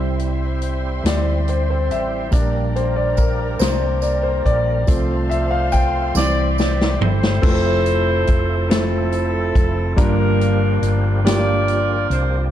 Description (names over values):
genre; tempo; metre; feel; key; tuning
slow gospel; 47 BPM (dotted quarters); 6/8; straight; F major; A4 = 441 Hz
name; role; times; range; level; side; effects
warm concert grand piano; accompaniment; 0.0-12.5 s; G2 to G5; -22 LUFS; equal; none
overdriven tonewheel organ; sustained chords; 0.0-12.5 s; F3 to C5; -29 LUFS; right 4 dB; slow rotary speaker, chorus vibrato
warm studio string section; sustained chords; 0.0-7.4 s; Bb4 to C6; -33 LUFS; left 3 dB; none
hollow-body short-scale fingered electric bass; bass; 0.0-12.5 s; F1 to D2; -20 LUFS; equal; none
swinging big-band drum kit; drums; 0.2-12.3 s; crash cymbal, hi-hat, kick drum, snare drum, toms; -19 LUFS; equal; none
tambourine; percussion; 2.3-7.0 s; none; -34 LUFS; right 9 dB; none
clear saxophone section; melody; 6.2-12.4 s; C4 to D5; -22 LUFS; equal; none
room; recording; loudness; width
light reverb; dark, warm production; -16 LUFS; side -11 dB against mid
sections
0.0-7.4 A section; 7.4-12.5 B section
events
grand piano solo 0.0-7.4; drum fill 6.2-7.4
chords
0.0 C; 2.3 Gm/Bb; 4.9 F/C; 6.2 C; 7.4 Fmaj7; 10.0 Gm7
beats
1.05 | 2.33 3.60 | 4.88 6.16 | 7.43 8.71 | 9.98 11.25